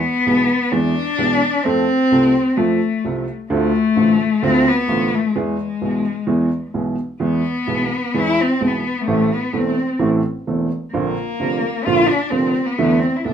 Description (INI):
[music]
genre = tango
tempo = 130 BPM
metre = 4/4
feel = rubato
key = unclear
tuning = A4 = 440 Hz
[part]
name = warm cello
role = second line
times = 0.0-13.3 s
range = G#3 to F4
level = -18 LUFS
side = left 3 dB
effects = none
[part]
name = dark upright piano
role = accompaniment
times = 0.3-13.3 s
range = E1 to A4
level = -19 LUFS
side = right 3 dB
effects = none
[sound]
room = wet club reverb, RT60 0.5 s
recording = minimal, uncompressed stereo recording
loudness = -16 LUFS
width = side -8 dB against mid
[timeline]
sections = 0.0-13.3 A section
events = cello solo 0.0-13.3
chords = 0.0 E; 1.7 F; 3.5 Dm7; 5.4 E; 9.1 Am; 10.9 Bbadd9; 12.8 E7sus4